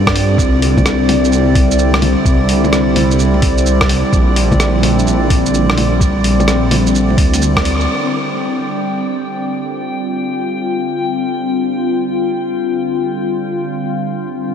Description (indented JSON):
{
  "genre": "future garage",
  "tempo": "128 BPM",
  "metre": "4/4",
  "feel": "swing 65% on 16ths",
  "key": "G dorian",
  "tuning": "A4 = 440 Hz",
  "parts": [
    { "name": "warbly tape-like pad", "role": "sustained chords", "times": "0.0-14.5 s", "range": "D3 to F4", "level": "-16 LUFS", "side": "left 1 dB", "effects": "chorus, built-in reverb, phaser, sidechain pumping" },
    { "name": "dark detuned saw bass", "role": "bass", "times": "0.0-7.9 s", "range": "Bb1 to G2", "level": "-15 LUFS", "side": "equal", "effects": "tube saturation, sidechain pumping" },
    { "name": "drifting glass-harmonics texture", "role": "texture", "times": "0.0-14.4 s", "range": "D5 to G5", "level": "-23 LUFS", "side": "right 4 dB", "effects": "chorus, built-in reverb" },
    { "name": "electronic kick drum", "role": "drums", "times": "0.1-7.6 s", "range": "none", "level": "-15 LUFS", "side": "equal", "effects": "none" },
    { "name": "lo-fi sampler-style drum kit", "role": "drums", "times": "0.1-7.9 s", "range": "bongos, hi-hat, rim click, shaker", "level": "-19 LUFS", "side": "equal", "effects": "low-pass filter on perc, low-pass filter on hats, low-pass filter on snare, low-pass filter on room" }
  ],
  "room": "wet huge ambient reverb, RT60 6.0 s",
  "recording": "dreamy mix soaked in reverb",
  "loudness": "-12 LUFS",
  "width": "side -8 dB against mid",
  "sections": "0.0-7.9 A section; 7.9-14.5 B section",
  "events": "band accent 7.5",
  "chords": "0.4 Cadd9; 4.1 Bb69; 7.9 G7sus4",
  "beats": "| 0.39 0.86 1.32 1.79 | 2.26 2.73 3.20 3.67 | 4.14 4.61 5.08 5.54 | 6.01 6.48 6.95 7.42 | 7.89 8.36 8.82 9.29 | 9.76 10.23 10.70 11.17 | 11.64 12.11 12.57 13.04 | 13.51 13.98 14.45"
}